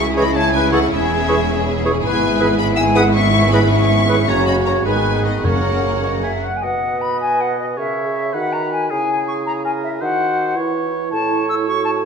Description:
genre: quick classical-period movement for symphony orchestra.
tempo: 106 BPM (dotted quarters).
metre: 6/8.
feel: rubato.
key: B major.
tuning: A4 = 438 Hz.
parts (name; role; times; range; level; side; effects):
rich studio violin section; melody; 0.0-6.4 s; D#5 to E6; -23 LUFS; left 3 dB; none.
clear studio violin section; second line; 0.0-6.4 s; D#4 to C#5; -26 LUFS; left 3 dB; none.
silver concert flute; second line; 0.0-11.9 s; F#4 to E6; -21 LUFS; left 3 dB; none.
rich studio viola section; accompaniment; 0.0-6.4 s; F#3 to C#4; -26 LUFS; right 3 dB; none.
mellow French horn section; sustained chords; 0.0-6.4 s; G#3 to F#4; -22 LUFS; left 2 dB; none.
bright studio double bass section; bass; 0.0-6.4 s; E1 to C#2; -22 LUFS; right 3 dB; none.
rich studio cello section; bass; 0.0-6.4 s; E2 to C#3; -23 LUFS; right 2 dB; none.
clear oboe; second line; 0.2-12.1 s; G#4 to G#5; -26 LUFS; right 2 dB; none.
mellow clarinet; second line; 0.2-12.1 s; E4 to B4; -25 LUFS; right 1 dB; none.
dark bassoon; accompaniment; 0.2-12.1 s; A2 to E3; -24 LUFS; right 4 dB; none.
timpani; percussion; 5.4-6.0 s; F#2; -23 LUFS; left 1 dB; none.
room: wet scoring stage reverb, RT60 1.9 s.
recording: minimal, uncompressed stereo recording.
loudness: -15 LUFS.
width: side -6 dB against mid.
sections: 0.0-6.6 A section; 6.6-12.1 B section.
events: none.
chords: 0.0 C#m; 0.9 C#m/E; 2.0 E/G#; 3.1 C#m7/G#; 4.3 F#; 4.8 G#m; 5.4 F#; 6.6 B; 7.8 A#dim/C#; 8.3 B/D#; 8.9 C#m; 10.0 Cdim/Eb; 10.6 C#m/E; 11.1 A.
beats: 0.35 | 0.91 1.48 | 2.04 2.59 | 3.15 3.71 | 4.28 4.85 | 5.44 6.04 | 6.63 7.20 | 7.77 8.34 | 8.90 9.47 | 10.02 10.57 | 11.12 11.68.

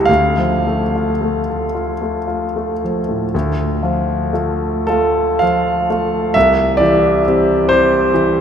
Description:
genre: classical, romantic nocturne for solo piano.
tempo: 33-45 BPM (dotted quarters).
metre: 6/8.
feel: rubato.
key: D minor.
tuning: A4 = 440 Hz.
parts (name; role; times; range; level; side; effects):
warm grand piano; solo; 0.0-8.4 s; C2 to F5; -14 LUFS; equal; none.
room: wet cathedral reverb, RT60 6.2 s.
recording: in a vast, echoing space, faint mains hum.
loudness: -14 LUFS.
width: side -8 dB against mid.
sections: 0.0-3.3 A section; 3.3-8.4 A section.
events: none.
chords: 0.1 Dm; 6.4 C.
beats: | 0.07 1.75 | 3.33 4.89 | 6.35 7.71.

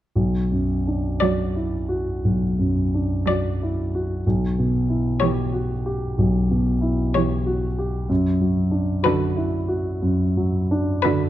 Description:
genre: classical, slow romantic movement for piano quartet.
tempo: 56-64 BPM.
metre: 4/4.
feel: rubato.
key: B minor.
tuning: A4 = 440 Hz.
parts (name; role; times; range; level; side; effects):
dark grand piano; accompaniment; 0.2-11.3 s; B1 to G4; -20 LUFS; equal; none.
rich violin; melody; 1.2-11.3 s; B4 to D5; -24 LUFS; left 8 dB; none.
rich cello; second line; 1.2-11.3 s; D3 to F#3; -26 LUFS; right 7 dB; none.
room: moderate recital hall reverb, RT60 1.6 s.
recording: dark, warm production.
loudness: -20 LUFS.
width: side -13 dB against mid.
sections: 0.1-11.3 A section.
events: none.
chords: 0.1 Bm; 4.2 C#m7b5/B; 8.1 Bm/F#.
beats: | 0.14 1.20 2.23 3.26 | 4.24 5.21 6.17 7.14 | 8.10 9.04 10.03 11.03.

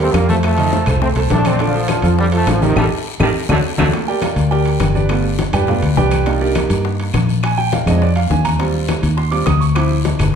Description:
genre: latin, salsa.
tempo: 206 BPM.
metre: 4/4.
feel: straight.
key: G minor.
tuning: A4 = 440 Hz.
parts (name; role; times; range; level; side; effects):
bright trombone section; melody; 0.0-3.9 s; C3 to D4; -19 LUFS; equal; plate reverb.
bright grand piano; accompaniment; 0.0-10.3 s; D3 to Eb6; -20 LUFS; right 5 dB; none.
fingered electric bass; bass; 0.0-10.4 s; G1 to G2; -16 LUFS; left 1 dB; none.
timbales; percussion; 0.0-10.3 s; none; -29 LUFS; right 3 dB; none.
bongos; percussion; 0.1-10.3 s; none; -26 LUFS; left 5 dB; none.
claves; percussion; 0.1-10.3 s; none; -33 LUFS; left 4 dB; none.
congas; percussion; 0.1-10.3 s; none; -24 LUFS; left 4 dB; none.
guiro; percussion; 0.1-10.3 s; none; -33 LUFS; left 7 dB; none.
room: moderate large studio reverb, RT60 0.8 s.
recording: heard from further back in the room.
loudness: -13 LUFS.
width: side -7 dB against mid.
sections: 0.0-3.9 A section; 3.9-10.4 B section.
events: band accent 2.8-3.9; drum fill 3.2-3.9; grand piano solo 3.9-10.4.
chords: 0.4 F7; 1.6 Bbmaj7; 2.8 Gsus2/A; 3.3 D; 3.9 Gm7; 5.1 G7; 6.3 Cm11; 7.4 Bb9; 8.6 Eb6; 9.8 Dm7.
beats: 0.14 | 0.43 0.72 1.02 1.31 | 1.60 1.89 2.18 2.47 | 2.76 3.05 3.35 3.64 | 3.93 4.22 4.51 4.80 | 5.09 5.38 5.68 5.97 | 6.26 6.55 6.84 7.13 | 7.43 7.72 8.01 8.30 | 8.59 8.88 9.18 9.47 | 9.76 10.05 10.35.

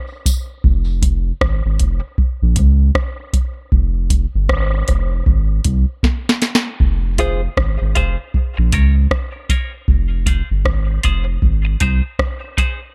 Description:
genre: dub reggae.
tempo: 78 BPM.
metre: 4/4.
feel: swing 58% on 16ths.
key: F minor.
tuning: A4 = 436 Hz.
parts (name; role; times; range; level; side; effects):
soft vintage rhythm box; drums; 0.3-12.8 s; hi-hat, kick drum, rim click, snare drum; -19 LUFS; equal; none.
tambourine; percussion; 0.3-0.5 s; none; -29 LUFS; equal; high-pass filter on perc, dub echo.
soft dub sub bass; bass; 0.6-12.0 s; F1 to Db2; -18 LUFS; equal; none.
semi-hollow electric guitar; accompaniment; 7.2-12.8 s; Eb4 to Db5; -26 LUFS; equal; high-pass filter, dub echo.
room: digital ambience.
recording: none.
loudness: -17 LUFS.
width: mono.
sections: 0.0-6.8 A section; 6.8-12.9 B section.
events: break 0.0-6.8; part muted 0.6-6.8; drum fill 6.0-6.8.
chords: 0.0 N.C.; 0.6 Fm; 2.2 Bbm; 3.7 Fm; 5.3 Ab; 6.8 Fm; 8.3 Bbm; 9.9 Fm; 11.4 Ab.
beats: | 0.65 1.42 2.19 2.96 | 3.73 4.49 5.26 6.03 | 6.80 7.57 8.34 9.11 | 9.88 10.65 11.42 12.19.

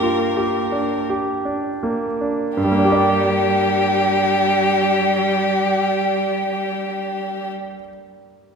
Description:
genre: classical, slow romantic movement for piano trio.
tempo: 42 BPM.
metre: 3/4.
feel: rubato.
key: G minor.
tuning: A4 = 436 Hz.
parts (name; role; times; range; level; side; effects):
clear violin; melody; 0.0-7.5 s; G4 to Bb4; -20 LUFS; left 4 dB; none.
rich cello; second line; 0.0-7.5 s; G3 to Bb3; -24 LUFS; right 5 dB; none.
clear concert grand piano; accompaniment; 0.0-8.6 s; G2 to D5; -21 LUFS; right 2 dB; none.
room: wet concert hall reverb, RT60 1.7 s.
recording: recorded in a church or concert hall.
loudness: -17 LUFS.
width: side -6 dB against mid.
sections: 0.0-2.6 A section; 2.6-6.9 B section.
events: slowing down 0.0-2.6.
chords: 0.0 Gm.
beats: 1.07 | 2.56 4.01 5.45.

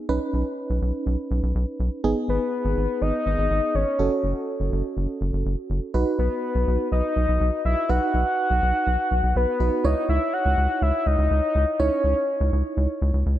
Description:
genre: synth-pop.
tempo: 123 BPM.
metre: 4/4.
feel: straight.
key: C# minor.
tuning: A4 = 440 Hz.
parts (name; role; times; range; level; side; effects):
FM electric piano with tremolo; accompaniment; 0.0-13.4 s; B3 to C#5; -28 LUFS; right 4 dB; none.
rubbery square bass; bass; 0.1-13.4 s; F#1 to C#2; -22 LUFS; equal; none.
soft octave-layered synth lead; melody; 2.3-12.5 s; B4 to F#5; -24 LUFS; left 1 dB; chorus, analog delay.
room: moderate plate reverb, RT60 2.4 s.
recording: dreamy mix soaked in reverb.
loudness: -21 LUFS.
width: side -12 dB against mid.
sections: 0.0-2.0 A section; 2.0-9.8 B section; 9.8-13.4 C section.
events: none.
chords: 0.1 Badd9; 2.0 G#m; 4.0 F#m; 5.9 B; 9.8 C#madd9.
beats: | 0.09 0.58 1.06 1.55 | 2.04 2.53 3.02 3.50 | 3.99 4.48 4.97 5.46 | 5.94 6.43 6.92 7.41 | 7.89 8.38 8.87 9.36 | 9.85 10.33 10.82 11.31 | 11.80 12.28 12.77 13.26.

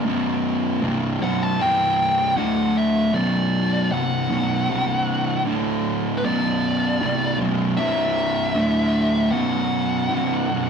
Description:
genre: metal.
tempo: 78 BPM.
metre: 4/4.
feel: straight.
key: unclear.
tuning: A4 = 438 Hz.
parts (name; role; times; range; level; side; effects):
fuzz guitar; riff; 0.0-10.7 s; B1 to D3; -20 LUFS; right 1 dB; distortion.
fuzz lead guitar; melody; 1.2-10.7 s; B4 to A5; -24 LUFS; left 1 dB; distortion.
room: wet stone room reverb, RT60 1.2 s.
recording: rough rehearsal-room recording.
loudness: -19 LUFS.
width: side -6 dB against mid.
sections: 0.0-10.7 A section.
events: none.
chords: 0.0 B5; 1.6 C5; 2.4 D5; 3.1 Bm; 4.7 C5; 5.5 D5; 6.2 Bm; 7.8 C5; 8.6 D5; 9.3 B5.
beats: | 0.04 0.82 1.59 2.37 | 3.14 3.92 4.69 5.47 | 6.24 7.01 7.79 8.56 | 9.33 10.10.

